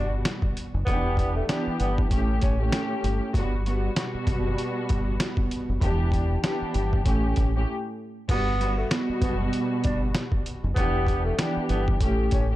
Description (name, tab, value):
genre	hip hop, boom-bap hip-hop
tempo	97 BPM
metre	4/4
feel	swing 58% on 16ths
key	unclear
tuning	A4 = 441 Hz
part	breathy tenor saxophone	melody	0.0-2.6, 8.3-12.5 s	A3 to D4	-32 LUFS	right 1 dB	high-pass filter, low-pass filter, tape echo
part	muted studio string section	accompaniment	0.0-12.6 s	G2 to G4	-28 LUFS	equal	cassette tape, high-pass filter, low-pass filter
part	deep dub fingered electric bass	bass	0.0-12.6 s	E1 to A1	-26 LUFS	equal	none
part	trip hop sampler-style drum kit	drums	0.3-12.5 s	crash cymbal, hi-hat, kick drum, snare drum	-27 LUFS	equal	none
room	digital ambience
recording	dark, warm production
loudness	-23 LUFS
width	side -15 dB against mid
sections	0.0-8.3 A section; 8.3-12.6 A section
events	break 7.7-8.3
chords	0.0 Gmaj7; 0.9 Em7; 2.1 A7; 3.3 Gmaj7; 5.8 Em7; 7.1 A7; 8.3 Gmaj7; 10.8 Em7; 12.0 A7